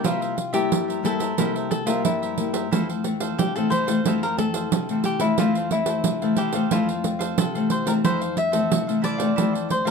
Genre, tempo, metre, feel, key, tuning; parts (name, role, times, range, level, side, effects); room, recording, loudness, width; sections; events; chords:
samba and choro; 90 BPM; 4/4; straight; F major; A4 = 436 Hz
cavaquinho; accompaniment; 0.0-9.9 s; E4 to F5; -33 LUFS; right 5 dB
nylon-string guitar; accompaniment; 0.0-9.9 s; F2 to E4; -24 LUFS; left 3 dB
pandeiro; percussion; 0.0-9.9 s; -25 LUFS; right 7 dB
cavaquinho; melody; 0.1-9.9 s; E4 to E5; -26 LUFS; left 2 dB
moderate studio ambience, RT60 0.5 s; dark, warm production; -20 LUFS; side -5 dB against mid
0.0-8.0 A section; 8.0-9.9 B section
0.0 C7; 2.7 Fmaj7